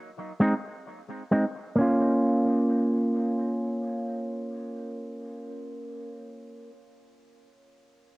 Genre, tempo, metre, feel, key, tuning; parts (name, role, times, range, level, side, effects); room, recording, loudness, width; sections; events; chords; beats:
reggae; 66 BPM; 4/4; straight; Bb minor; A4 = 441 Hz
electric guitar with an envelope filter; accompaniment; 0.4-6.8 s; Ab3 to F4; -25 LUFS; equal; low-pass filter, cassette tape, dub echo
light reverb, digital ambience; home recording on cassette; -24 LUFS; side -22 dB against mid
0.0-1.8 A section; 1.8-5.4 B section
filter sweep on clean electric guitar 0.0-1.8
0.0 Ab; 1.8 Bbm
0.85 | 1.76 2.67 3.58 4.49